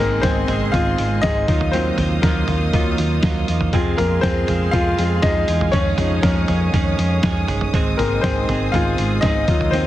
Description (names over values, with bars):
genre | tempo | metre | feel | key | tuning
piano-driven pop | 120 BPM | 4/4 | straight | unclear | A4 = 439 Hz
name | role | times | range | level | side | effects
clear concert grand piano | accompaniment | 0.0-9.9 s | F3 to F5 | -22 LUFS | left 3 dB | none
rich studio string section | sustained chords | 0.0-9.9 s | Gb3 to Eb6 | -29 LUFS | left 1 dB | none
direct-recorded clean electric guitar | riff | 0.0-9.9 s | F2 to Ab4 | -24 LUFS | right 6 dB | lush chorus
hollow-body short-scale fingered electric bass | bass | 0.0-9.9 s | G1 to F2 | -21 LUFS | equal | none
lo-fi sampler-style drum kit | drums | 0.2-9.8 s | hi-hat, kick drum, snare drum, toms | -21 LUFS | equal | none
room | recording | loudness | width
light reverb, digital ambience | heavily compressed radio sound, multiband compression | -16 LUFS | side -14 dB against mid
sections
0.0-9.9 A section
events
grand piano solo 0.0-9.9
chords
0.0 Ab; 1.5 Ebmadd9; 3.7 Fm; 5.7 Dbadd9/F; 7.7 Ab